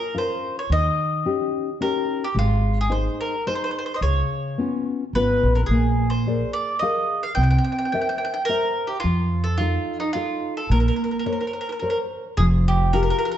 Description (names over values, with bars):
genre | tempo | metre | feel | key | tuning
italian folk | 108 BPM | 3/4 | swing 54% on 8ths | Bb minor | A4 = 437 Hz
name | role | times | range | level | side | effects
bowl-back mandolin | melody | 0.0-13.4 s | Eb4 to G5 | -25 LUFS | right 1 dB | none
nylon-string guitar | accompaniment | 0.0-13.4 s | Db3 to F5 | -25 LUFS | left 2 dB | none
upright bass | bass | 0.7-13.1 s | F1 to F2 | -20 LUFS | equal | none
room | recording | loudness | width
moderate recital hall reverb, RT60 1.5 s | dark, warm production, nothing above 8.0 kHz | -20 LUFS | side -10 dB against mid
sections
0.0-12.4 A section; 12.4-13.4 B section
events
none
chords
0.0 Bbm; 0.7 Eb7; 2.3 Ab; 4.0 Db7; 5.7 Bb7; 7.4 C7; 9.0 F7; 10.7 Bbmadd9; 12.4 Fmadd9